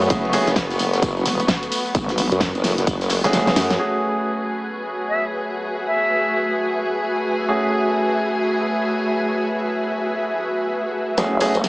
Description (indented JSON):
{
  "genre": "bass house",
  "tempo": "130 BPM",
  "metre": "4/4",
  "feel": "swing 61% on 16ths",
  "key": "F# dorian",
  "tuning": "A4 = 440 Hz",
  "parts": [
    { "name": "dark chamber string section", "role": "sustained chords", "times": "0.0-11.7 s", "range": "F#3 to G#4", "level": "-24 LUFS", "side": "equal", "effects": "sidechain pumping, low-pass filter" },
    { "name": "clear concert grand piano", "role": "stabs", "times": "0.0-0.5, 3.2-11.5 s", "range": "A3 to G#4", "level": "-25 LUFS", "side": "right 1 dB", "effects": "sidechain pumping, dub echo" },
    { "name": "vowel-sweep wobble bass", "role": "bass", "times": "0.0-3.5, 11.2-11.7 s", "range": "E1 to G#1", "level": "-21 LUFS", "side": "equal", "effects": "chorus, tube saturation, sidechain pumping, high-pass filter" },
    { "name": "tambourine", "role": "percussion", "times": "0.0-3.8, 11.2-11.7 s", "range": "none", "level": "-31 LUFS", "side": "left 1 dB", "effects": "none" },
    { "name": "ethereal airy pad", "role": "texture", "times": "0.0-11.7 s", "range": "F#4 to D#6", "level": "-26 LUFS", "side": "equal", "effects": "ensemble chorus, built-in reverb, tremolo, sidechain pumping" },
    { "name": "big-room dance drum kit", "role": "drums", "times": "0.1-3.8, 11.2-11.7 s", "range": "hi-hat, snare drum", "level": "-24 LUFS", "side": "equal", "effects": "none" },
    { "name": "electronic kick drum", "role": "drums", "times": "0.1-3.0 s", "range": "none", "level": "-23 LUFS", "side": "equal", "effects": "none" },
    { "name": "natural country drum kit", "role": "drums", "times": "0.1-3.7 s", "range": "ride cymbal, snare drum", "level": "-32 LUFS", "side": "equal", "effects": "none" },
    { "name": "formant-sweep wobble bass", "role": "bass", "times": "0.5-3.8 s", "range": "F#1 to F#2", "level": "-21 LUFS", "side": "equal", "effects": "chorus, sidechain pumping" },
    { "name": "bright reedy silver concert flute", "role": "melody", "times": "5.1-6.5 s", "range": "E5", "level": "-24 LUFS", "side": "equal", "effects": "dub echo" },
    { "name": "riser", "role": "sound effects", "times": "11.6-11.7 s", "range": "none", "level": "-32 LUFS", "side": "equal", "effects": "none" }
  ],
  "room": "moderate lush hall reverb, RT60 2.3 s",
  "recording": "small speaker sound",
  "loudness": "-18 LUFS",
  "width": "side -22 dB against mid",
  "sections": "0.0-3.8 A section; 3.8-11.2 B section",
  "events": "drop 0.0-3.8; kick drops out 3.3-3.8; drum fill 3.3-3.8, 11.2-11.7",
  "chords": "0.0 F#madd9",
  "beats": "| 0.10 0.56 1.02 1.49 | 1.95 2.41 2.87 3.33 | 3.79 4.25 4.72 5.18 | 5.64 6.10 6.56 7.02 | 7.49 7.95 8.41 8.87 | 9.33 9.79 10.26 10.72 | 11.18 11.64"
}